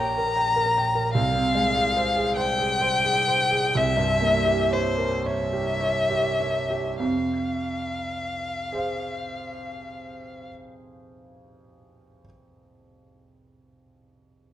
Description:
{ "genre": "classical, romantic duo for violin and grand piano", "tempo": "32-52 BPM (dotted quarters)", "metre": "12/8", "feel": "rubato", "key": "F minor", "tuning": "A4 = 437 Hz", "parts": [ { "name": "rich violin", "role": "melody", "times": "0.0-10.5 s", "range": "C5 to Bb5", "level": "-24 LUFS", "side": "left 2 dB", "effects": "none" }, { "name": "warm concert grand piano", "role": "accompaniment", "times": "0.0-14.5 s", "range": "Bb1 to G5", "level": "-26 LUFS", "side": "right 2 dB", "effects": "none" } ], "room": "wet recital hall reverb, RT60 1.3 s", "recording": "dark, warm production", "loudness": "-21 LUFS", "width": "side -12 dB against mid", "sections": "0.0-7.0 A section; 7.0-13.8 B section", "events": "slowing down 0.0-7.0", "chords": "0.0 Gdim/Bb; 1.1 Fm/C; 3.8 C7b9; 7.0 Fm" }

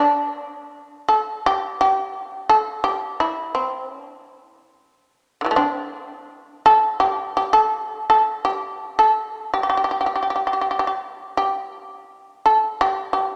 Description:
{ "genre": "japanese traditional", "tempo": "84 BPM", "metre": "4/4", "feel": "uneven beats, rubato", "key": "D suspended pentatonic", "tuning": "A4 = 435 Hz", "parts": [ { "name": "shamisen", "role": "solo", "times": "0.0-13.4 s", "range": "D3 to A4", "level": "-20 LUFS", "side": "equal", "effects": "none" } ], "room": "moderate concert hall reverb, RT60 2.3 s", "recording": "none", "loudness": "-21 LUFS", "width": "mono", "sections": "0.0-13.4 A section", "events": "none", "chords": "none" }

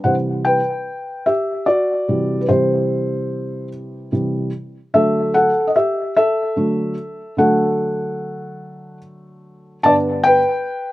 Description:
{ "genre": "pop", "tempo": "49 BPM (dotted quarters)", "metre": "6/8", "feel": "straight", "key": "unclear", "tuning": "A4 = 440 Hz", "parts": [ { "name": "felt-muted upright piano", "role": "solo", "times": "0.0-10.9 s", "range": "G2 to A5", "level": "-16 LUFS", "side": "equal", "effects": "slapback echo" } ], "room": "little or no reverb", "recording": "recorded outdoors, with no room sound", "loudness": "-16 LUFS", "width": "side -16 dB against mid", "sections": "0.0-9.8 A section; 9.8-10.9 B section", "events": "felt piano solo 0.0-9.8, 9.8-10.9", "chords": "0.0 C; 4.9 D; 9.8 G" }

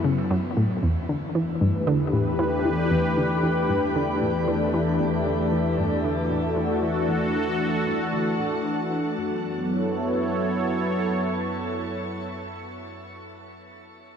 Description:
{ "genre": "ambient, sequencer-driven space music", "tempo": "115 BPM", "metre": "4/4", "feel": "straight", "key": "unclear", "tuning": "A4 = 441 Hz", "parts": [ { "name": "sweeping resonant pad", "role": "sustained chords", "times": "0.0-13.0 s", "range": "E3 to C#5", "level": "-24 LUFS", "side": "left 1 dB", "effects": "chorus" }, { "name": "analog pluck", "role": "riff", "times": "0.0-9.4 s", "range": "E2 to E3", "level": "-27 LUFS", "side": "equal", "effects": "chorus, ping-pong delay" }, { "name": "analog drone", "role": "bass", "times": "0.0-10.7 s", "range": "E2 to F#2", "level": "-33 LUFS", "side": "equal", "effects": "chorus" } ], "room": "wet shimmer reverb, RT60 6.7 s", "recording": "dark, warm production", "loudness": "-22 LUFS", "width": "side -7 dB against mid", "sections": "0.8-9.2 A section; 9.2-13.3 B section", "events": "fade-out on synth arpeggio sound 0.8-9.2; fade-out on synth drone 0.8-9.2", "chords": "0.0 F#m7; 0.8 Em; 9.2 F#m7" }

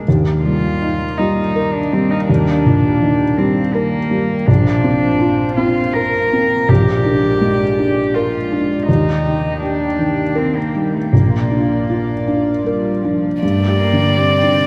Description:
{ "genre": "neoclassical piano and strings", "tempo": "81 BPM", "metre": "3/4", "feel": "rubato", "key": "Bb major", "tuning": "A4 = 440 Hz", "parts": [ { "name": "felt-muted upright piano", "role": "accompaniment", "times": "0.0-14.7 s", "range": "Bb1 to Bb4", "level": "-18 LUFS", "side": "equal", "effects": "none" }, { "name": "chorused pulse-width pad", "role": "sustained chords", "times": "0.0-14.7 s", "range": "G3 to G5", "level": "-28 LUFS", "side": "equal", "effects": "none" }, { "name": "warm cello", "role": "second line", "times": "0.4-14.7 s", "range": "F3 to Bb4", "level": "-21 LUFS", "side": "equal", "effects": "none" }, { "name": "rich violin", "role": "melody", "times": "13.4-14.7 s", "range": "D5", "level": "-19 LUFS", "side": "equal", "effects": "none" } ], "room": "wet church reverb, RT60 3.6 s", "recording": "recorded in a church or concert hall", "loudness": "-16 LUFS", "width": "mono", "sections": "0.0-13.4 A section; 13.4-14.7 B section", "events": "none", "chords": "0.1 Eb; 4.5 Bbadd9; 6.7 Bb7; 8.9 Eb; 11.1 Bb; 13.4 G5" }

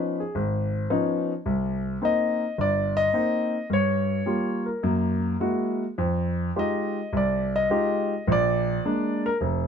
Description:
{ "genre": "solo jazz", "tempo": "107 BPM", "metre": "4/4", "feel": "swing 69% on 8ths, rubato", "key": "unclear", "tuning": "A4 = 441 Hz", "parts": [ { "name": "warm grand piano", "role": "solo", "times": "0.0-9.7 s", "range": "F1 to Eb5", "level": "-23 LUFS", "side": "left 1 dB", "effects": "none" } ], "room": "light reverb", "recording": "close, detailed microphones", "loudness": "-23 LUFS", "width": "side -7 dB against mid", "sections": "0.0-9.7 A section", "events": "grand piano solo 0.0-9.7", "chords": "0.0 Db9; 1.5 Cm7; 3.7 Gm7b5; 4.8 Gb9; 6.0 Fm9; 8.3 Bb7" }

